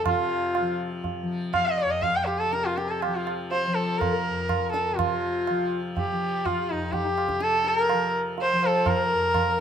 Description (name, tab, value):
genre	indian classical, Hindustani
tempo	123 BPM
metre	5/4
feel	straight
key	F major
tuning	A4 = 444 Hz
part	rich sarangi	melody	0.0-9.6 s	Eb4 to G5	-25 LUFS	equal	none
part	pedal harmonium	second line	0.0-9.6 s	Eb4 to F5	-32 LUFS	left 4 dB	none
part	tanpura	drone	0.0-9.6 s	F2 to F3	-32 LUFS	left 3 dB	none
part	tabla	percussion	0.1-9.5 s	none	-29 LUFS	right 7 dB	none
room	light reverb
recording	minimal, uncompressed stereo recording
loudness	-23 LUFS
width	side -8 dB against mid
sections	0.0-9.6 A section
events	speeding up 0.0-9.6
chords	none